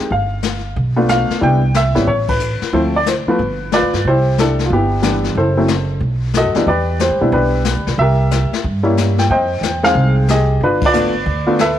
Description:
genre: jazz piano trio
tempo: 183 BPM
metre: 4/4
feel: swing 64% on 8ths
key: C major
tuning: A4 = 444 Hz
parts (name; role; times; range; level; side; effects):
- warm baby grand piano; melody; 0.0-11.8 s; E3 to G5; -16 LUFS; equal; none
- upright bass; bass; 0.1-11.8 s; F#1 to B2; -18 LUFS; right 1 dB; none
- jazz brush drum kit; drums; 0.1-11.8 s; brushed snare drum, hi-hat, kick drum, ride cymbal, snare drum; -22 LUFS; left 6 dB; none
room: light reverb, studio ambience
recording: 1960s-style stereo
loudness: -13 LUFS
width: side -11 dB against mid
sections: 0.0-4.0 A section; 4.0-11.8 A section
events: band accent 2.2, 10.8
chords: 0.1 G9; 1.4 Cmaj9; 2.1 Aadd9; 2.7 Dm7; 3.4 G7; 4.0 Cmaj9; 5.4 F#m7b5; 6.0 B7; 6.7 Em7; 8.0 C7b9; 9.3 Fm9; 10.6 G9

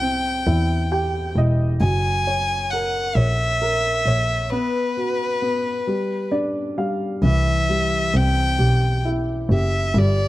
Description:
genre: six-eight pop ballad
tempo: 44 BPM (dotted quarters)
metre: 6/8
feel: straight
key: unclear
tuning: A4 = 437 Hz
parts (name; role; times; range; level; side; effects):
- rich violin; melody; 0.0-10.3 s; B4 to G#5; -23 LUFS; left 1 dB; none
- warm baby grand piano; accompaniment; 0.0-10.3 s; C3 to G5; -24 LUFS; equal; none
- rich double bass; bass; 0.0-10.3 s; E1 to E2; -20 LUFS; equal; none
room: light reverb, small room ambience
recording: dark, warm production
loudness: -18 LUFS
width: side -16 dB against mid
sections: 0.0-7.2 A section; 7.2-10.3 B section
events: grand piano fill 0.5-1.8, 5.9-7.2; break 4.5-7.2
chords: 0.0 C; 1.8 F#7; 4.5 B5; 5.9 G5; 7.2 C

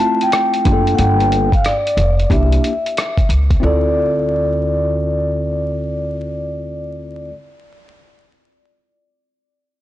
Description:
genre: hip hop, jazz-hop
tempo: 91 BPM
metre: 4/4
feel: swing 65% on 16ths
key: D minor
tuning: A4 = 440 Hz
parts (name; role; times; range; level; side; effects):
- vibraphone with soft mallets; melody; 0.0-7.3 s; D5 to A5; -19 LUFS; left 1 dB; tape echo
- tine electric piano; accompaniment; 0.0-7.3 s; A3 to A4; -22 LUFS; equal; overdrive, medium stereo tremolo
- lo-fi sampler-style drum kit; drums; 0.2-3.6 s; hi-hat, kick drum, rim click; -18 LUFS; equal; soft clipping on snare
- upright bass; bass; 0.7-7.3 s; F1 to D2; -18 LUFS; equal; tube saturation
room: small room ambience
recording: blown-out, overdriven recording, vinyl crackle, overdrive, nothing above 10.5 kHz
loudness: -14 LUFS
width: side -14 dB against mid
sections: 0.0-3.6 A section; 3.6-6.3 B section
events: none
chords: 0.0 Dm7; 1.0 Gm7; 2.3 C7; 3.6 Dm7

